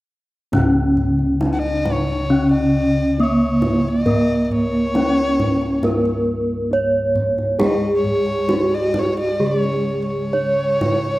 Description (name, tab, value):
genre	Javanese gamelan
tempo	68 BPM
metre	4/4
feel	straight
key	C# pelog barang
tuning	A4 = 440 Hz
part	gamelan-type bronze metallophone	melody	0.5-11.2 s	A#3+20c to C#5	-19 LUFS	equal	none
part	gamelan-type bronze metallophone	accompaniment	0.5-11.2 s	C#3 to A#3+20c	-26 LUFS	equal	none
part	gamelan-type bossed gongs	bass	0.5-11.2 s	C#2 to A#4+20c	-25 LUFS	equal	none
part	kendang	percussion	0.5-11.2 s	none	-24 LUFS	equal	none
part	dark erhu	second line	1.5-11.2 s	C#5 to F#5+30c	-24 LUFS	left 1 dB	none
room	moderate plate reverb, RT60 2.6 s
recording	rough home demo mix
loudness	-16 LUFS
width	side -18 dB against mid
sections	0.5-11.2 A section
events	none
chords	none